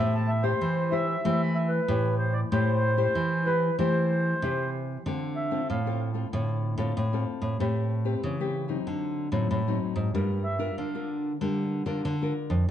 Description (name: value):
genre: samba and choro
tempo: 94 BPM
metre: 4/4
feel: straight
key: A minor, D minor from 5.1 s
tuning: A4 = 443 Hz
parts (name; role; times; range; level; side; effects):
- mellow accordion; melody; 0.0-6.0, 10.4-11.1 s; B4 to B5; -28 LUFS; right 1 dB; none
- nylon-string guitar; accompaniment; 0.0-12.7 s; A2 to C5; -30 LUFS; left 5 dB; none
- nylon-string guitar; bass; 0.0-12.7 s; F2 to E3; -28 LUFS; right 2 dB; none
room: moderate large studio reverb, RT60 1.4 s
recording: dark, warm production, nothing above 10.5 kHz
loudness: -25 LUFS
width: side -10 dB against mid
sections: 0.0-5.1 A section; 5.1-12.7 B section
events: accordion solo 5.1-12.7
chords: 0.0 Am7; 5.1 Dm7; 7.6 Am9; 8.9 D7b9; 10.1 Gm7